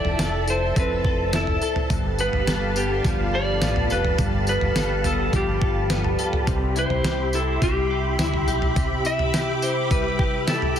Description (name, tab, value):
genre	dream pop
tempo	105 BPM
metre	4/4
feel	straight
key	unclear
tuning	A4 = 438 Hz
part	clean lap steel guitar	melody	0.0-10.8 s	E4 to E5	-26 LUFS	equal	digital delay
part	soft string machine	sustained chords	0.0-10.8 s	G4 to D6	-28 LUFS	equal	ensemble chorus
part	direct-recorded clean electric guitar	arpeggios	0.0-10.8 s	G2 to A4	-28 LUFS	left 2 dB	ensemble chorus, digital delay
part	fingered electric bass	bass	0.0-8.7 s	F1 to D2	-26 LUFS	equal	none
part	detuned 8-bit digital drum machine	drums	0.0-10.8 s	kick drum, snare drum, tambourine, toms	-25 LUFS	equal	none
part	vibraphone with medium mallets	texture	0.0-8.5 s	G4 to A5	-36 LUFS	left 1 dB	digital delay
room	light reverb, digital ambience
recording	dense, heavily limited modern master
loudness	-20 LUFS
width	side -9 dB against mid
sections	0.0-10.8 A section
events	none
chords	0.0 Fmaj7; 1.9 G9; 6.5 Cmaj7